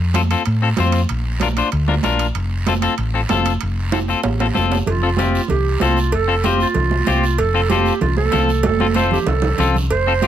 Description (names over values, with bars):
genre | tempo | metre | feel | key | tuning
latin, cumbia | 191 BPM | 4/4 | straight | F major | A4 = 441 Hz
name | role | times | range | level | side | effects
hollow-body short-scale fingered electric bass | bass | 0.0-10.3 s | F1 to A2 | -19 LUFS | equal | none
clean electric guitar | accompaniment | 0.1-10.3 s | C4 to C5 | -20 LUFS | left 7 dB | none
congas | percussion | 0.1-10.3 s | none | -23 LUFS | right 6 dB | none
guiro | percussion | 0.1-10.3 s | none | -32 LUFS | right 4 dB | none
timbales and cowbell | percussion | 0.1-10.3 s | none | -26 LUFS | right 4 dB | none
breathy clarinet | second line | 4.9-10.3 s | F4 to C5 | -21 LUFS | right 6 dB | none
room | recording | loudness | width
light reverb | close, detailed microphones | -15 LUFS | side -10 dB against mid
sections
0.0-4.9 A section; 4.9-10.3 B section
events
drum fill 3.9-4.9, 8.6-9.9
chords
0.0 F; 1.1 Bb; 2.4 F